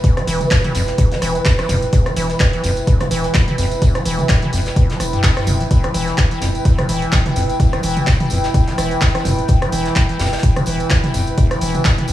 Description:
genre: acid house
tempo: 127 BPM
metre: 4/4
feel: swing 56% on 16ths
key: E phrygian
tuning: A4 = 439 Hz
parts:
  - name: acid bass, square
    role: riff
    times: 0.0-12.1 s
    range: D2 to G3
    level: -20 LUFS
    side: equal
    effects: wide subtle chorus, sidechain pumping, analog delay
  - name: electronic kick drum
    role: drums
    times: 0.0-12.0 s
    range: none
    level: -14 LUFS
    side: equal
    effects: none
  - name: punchy analog drum machine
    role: drums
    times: 0.0-12.1 s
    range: handclaps, hi-hat, rim click, toms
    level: -22 LUFS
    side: equal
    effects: none
  - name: soft brush drum kit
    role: drums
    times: 0.0-12.1 s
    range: hi-hat, snare drum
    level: -31 LUFS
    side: left 2 dB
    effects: none
  - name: tambourine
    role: percussion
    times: 0.0-12.1 s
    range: none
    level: -32 LUFS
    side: right 5 dB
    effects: none
  - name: warbly tape-like pad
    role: texture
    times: 0.0-12.1 s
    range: E4 to G5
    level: -23 LUFS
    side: right 1 dB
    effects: chorus, built-in reverb, sidechain pumping
  - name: saturated sub bass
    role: bass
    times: 0.3-12.1 s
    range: E1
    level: -24 LUFS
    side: equal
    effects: sidechain pumping
room: light reverb, small room ambience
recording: dry, gritty hardware recording, studio reverb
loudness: -14 LUFS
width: side -13 dB against mid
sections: 0.0-12.1 A section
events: none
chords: 0.0 Em

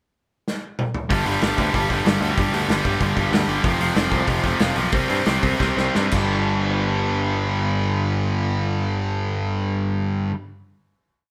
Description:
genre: punk rock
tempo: 164-190 BPM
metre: 4/4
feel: straight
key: unclear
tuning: A4 = 440 Hz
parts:
  - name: loose indie drum kit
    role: drums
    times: 0.5-6.2 s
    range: crash cymbal, hi-hat, kick drum, snare drum, toms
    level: -27 LUFS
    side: equal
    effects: none
  - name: overdriven electric guitar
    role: riff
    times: 1.1-10.3 s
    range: F2 to C4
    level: -25 LUFS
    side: equal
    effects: none
  - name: tight distorted guitar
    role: riff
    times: 1.1-10.3 s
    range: F2 to C4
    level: -28 LUFS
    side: equal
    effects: distortion
  - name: modern bright picked electric bass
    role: bass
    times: 1.1-10.3 s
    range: F1 to G2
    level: -29 LUFS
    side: equal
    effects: none
room: moderate studio reverb, RT60 0.8 s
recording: band playing live in one room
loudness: -21 LUFS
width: mono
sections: 0.0-1.1 pickup bar; 1.1-6.3 verse; 6.3-9.2 final hit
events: drum fill 0.5-1.1, 5.6-6.3; slowing down 3.6-6.3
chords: 0.0 N.C.; 1.1 G5; 3.6 F5; 4.9 C5; 6.1 G5

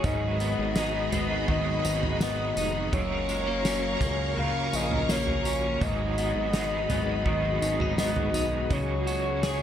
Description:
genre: dream pop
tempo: 83 BPM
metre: 4/4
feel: straight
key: G# dorian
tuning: A4 = 440 Hz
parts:
  - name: soft octave-layered synth lead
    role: melody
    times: 0.0-9.6 s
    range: C#5 to E#5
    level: -31 LUFS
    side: left 2 dB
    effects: chorus, tape echo
  - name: raw garage guitar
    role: accompaniment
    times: 0.0-9.6 s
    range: G#2 to A#4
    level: -35 LUFS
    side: right 5 dB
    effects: overdrive, tremolo, analog chorus
  - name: string machine, cellos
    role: sustained chords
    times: 0.0-9.6 s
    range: F#4 to C#6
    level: -33 LUFS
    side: equal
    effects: ensemble chorus
  - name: electric guitar at the edge of break-up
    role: arpeggios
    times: 0.0-9.6 s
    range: F#2 to G#4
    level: -32 LUFS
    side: left 2 dB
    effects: wide subtle chorus, tape echo
  - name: fat analog bass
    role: bass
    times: 0.0-9.6 s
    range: E#1 to C#2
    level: -32 LUFS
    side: equal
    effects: none
  - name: loose indie drum kit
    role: drums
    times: 0.0-9.6 s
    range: kick drum, snare drum, tambourine, toms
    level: -31 LUFS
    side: right 1 dB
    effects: none
room: light reverb, small room ambience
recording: none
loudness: -24 LUFS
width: side -10 dB against mid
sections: 0.0-9.6 A section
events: none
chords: 0.0 G#m7; 2.9 F#maj7; 5.8 G#m7; 8.7 C#sus4

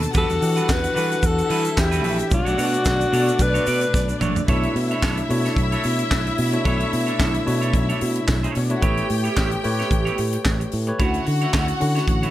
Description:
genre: disco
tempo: 111 BPM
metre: 4/4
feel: swing 56% on 16ths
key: B minor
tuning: A4 = 441 Hz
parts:
  - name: clear symphonic string section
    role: second line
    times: 0.0-12.3 s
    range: C#4 to A5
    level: -27 LUFS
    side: equal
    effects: none
  - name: clean electric guitar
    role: accompaniment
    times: 0.0-12.3 s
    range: G3 to D5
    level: -30 LUFS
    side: right 4 dB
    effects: none
  - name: tine electric piano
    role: accompaniment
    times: 0.0-12.3 s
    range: B2 to D5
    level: -26 LUFS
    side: left 2 dB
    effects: none
  - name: fingered electric bass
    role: bass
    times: 0.0-12.3 s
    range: A1 to E3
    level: -24 LUFS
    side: right 1 dB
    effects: none
  - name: tight funk drum kit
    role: drums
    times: 0.0-12.3 s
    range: handclaps, hi-hat, kick drum, snare drum, toms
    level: -24 LUFS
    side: equal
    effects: none
  - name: egg shaker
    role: percussion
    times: 0.0-4.5 s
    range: none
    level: -38 LUFS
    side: right 7 dB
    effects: none
  - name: warm alto saxophone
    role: melody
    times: 0.2-4.2 s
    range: F#4 to B4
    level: -23 LUFS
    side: left 2 dB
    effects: tape echo
room: light reverb, small room ambience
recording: none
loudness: -18 LUFS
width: side -14 dB against mid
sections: 0.0-4.5 A section; 4.5-12.3 B section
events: drum fill 3.9-4.5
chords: 0.1 Em9; 2.3 Bm9; 4.5 Bm11; 8.8 A9; 11.0 Dmaj9

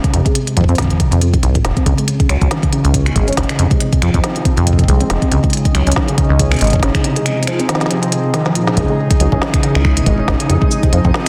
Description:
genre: IDM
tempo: 139 BPM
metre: 4/4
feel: swing 56% on 16ths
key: unclear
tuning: A4 = 440 Hz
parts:
  - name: warbly dusty pluck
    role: arpeggios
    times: 0.0-11.3 s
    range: C2 to C#4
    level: -20 LUFS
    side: equal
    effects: ensemble chorus, digital delay
  - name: electronic kick drum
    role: drums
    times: 0.0-11.1 s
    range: none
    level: -18 LUFS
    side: equal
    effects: none
  - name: organic electronic drum kit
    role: drums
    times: 0.0-11.3 s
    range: finger snaps, hi-hat, shaker, snare drum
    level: -24 LUFS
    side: equal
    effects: soft clipping on snare, delay
  - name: deep acid bass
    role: bass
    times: 0.1-11.1 s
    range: F1 to F2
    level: -17 LUFS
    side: equal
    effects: none
  - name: warbly tape-like pad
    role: sustained chords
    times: 2.6-11.3 s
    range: E3 to D#5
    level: -24 LUFS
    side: equal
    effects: chorus, built-in reverb
  - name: twinkling granular texture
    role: texture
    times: 9.2-11.3 s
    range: D#4 to D#5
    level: -31 LUFS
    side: equal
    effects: built-in reverb
room: light reverb, digital ambience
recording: dense, heavily limited modern master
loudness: -14 LUFS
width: mono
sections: 0.0-8.8 A section; 8.8-11.3 B section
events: kick drops out 7.0-8.8; drum fill 8.3-8.8; band accent 8.7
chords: 0.1 F5; 1.9 C#madd9; 3.6 Fm7; 5.3 C#madd9; 7.0 Fm7; 8.8 C#madd9; 10.5 Fm7

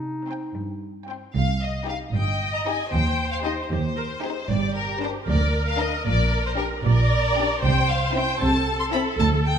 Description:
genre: cinematic, playful, whimsical film cue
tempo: 77 BPM (dotted quarters)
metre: 6/8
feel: straight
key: C minor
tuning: A4 = 442 Hz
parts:
  - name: mellow clarinet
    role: second line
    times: 0.0-1.1 s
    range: Eb4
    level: -33 LUFS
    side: equal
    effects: none
  - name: warm studio cello section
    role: bass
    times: 0.0-9.6 s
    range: C2 to C3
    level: -26 LUFS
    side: right 2 dB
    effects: none
  - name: warm studio violin section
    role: melody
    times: 0.3-9.6 s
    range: Bb4 to C6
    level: -27 LUFS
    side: left 4 dB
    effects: none
  - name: rich studio violin section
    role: second line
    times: 0.3-9.1 s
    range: C4 to G5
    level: -30 LUFS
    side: left 4 dB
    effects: none
  - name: warm studio viola section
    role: accompaniment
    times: 0.3-9.6 s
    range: C4 to Eb5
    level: -28 LUFS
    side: right 2 dB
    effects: none
  - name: dark studio double bass section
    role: bass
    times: 1.4-9.6 s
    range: G1 to Eb2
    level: -25 LUFS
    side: right 2 dB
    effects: none
room: wet recital hall reverb, RT60 1.5 s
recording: none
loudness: -21 LUFS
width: side -8 dB against mid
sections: 0.0-1.3 A section; 1.3-9.6 B section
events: none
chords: 0.0 Cm; 2.9 Cm/Eb; 4.5 Gm; 6.1 Gm/Bb; 7.6 Am/C

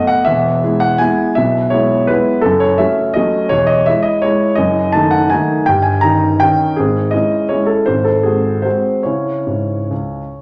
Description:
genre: classical, piano waltz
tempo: 134-177 BPM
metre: 3/4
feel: rubato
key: C# minor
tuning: A4 = 440 Hz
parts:
  - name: warm concert grand piano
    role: solo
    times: 0.0-10.4 s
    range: E1 to A#5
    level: -14 LUFS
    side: equal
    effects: none
room: wet recital hall reverb, RT60 1.4 s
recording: none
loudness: -14 LUFS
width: mono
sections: 0.0-10.4 A section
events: none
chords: 0.3 E; 2.4 F#m; 3.5 C#m/E; 4.6 D#dim/F#; 5.7 D#7/G; 6.8 C#m/G#; 7.9 G#7; 9.1 C#m

